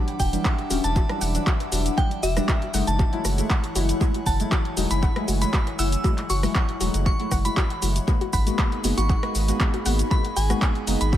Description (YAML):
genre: deep house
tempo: 118 BPM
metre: 4/4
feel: swing 53% on 16ths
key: unclear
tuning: A4 = 442 Hz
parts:
  - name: airy breathy pad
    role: sustained chords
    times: 0.0-11.2 s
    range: E3 to D6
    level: -36 LUFS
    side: left 2 dB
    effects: chorus, sidechain pumping
  - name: deep mellow chord stab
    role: stabs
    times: 0.0-11.2 s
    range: E3 to F#4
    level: -28 LUFS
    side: left 1 dB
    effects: chorus, sidechain pumping, dub echo
  - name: warbly tape-like pad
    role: texture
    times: 0.0-11.2 s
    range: D4 to B5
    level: -35 LUFS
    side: left 2 dB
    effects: chorus, built-in reverb, sidechain pumping
  - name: deep house drum kit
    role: drums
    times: 0.1-11.2 s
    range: handclaps, hi-hat, rim click, shaker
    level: -30 LUFS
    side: right 1 dB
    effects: overdrive, tape echo
  - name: glassy synth bell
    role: melody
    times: 0.2-11.2 s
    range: E5 to E6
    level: -31 LUFS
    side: right 1 dB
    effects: chorus, analog delay
  - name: soft round pluck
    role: arpeggios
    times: 0.2-11.2 s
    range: F#4 to F#5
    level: -35 LUFS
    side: left 4 dB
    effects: chorus, sidechain pumping, dub echo
  - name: warm sub bass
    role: bass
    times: 0.2-11.2 s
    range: D1 to G#1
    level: -24 LUFS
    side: equal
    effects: sidechain pumping
  - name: electronic kick drum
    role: drums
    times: 0.2-11.2 s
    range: none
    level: -23 LUFS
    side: equal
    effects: none
room: light reverb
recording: echo-heavy mix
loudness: -20 LUFS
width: side -12 dB against mid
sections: 0.0-11.2 A section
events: none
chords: 0.0 Em9; 2.7 F#m9; 8.1 G#m9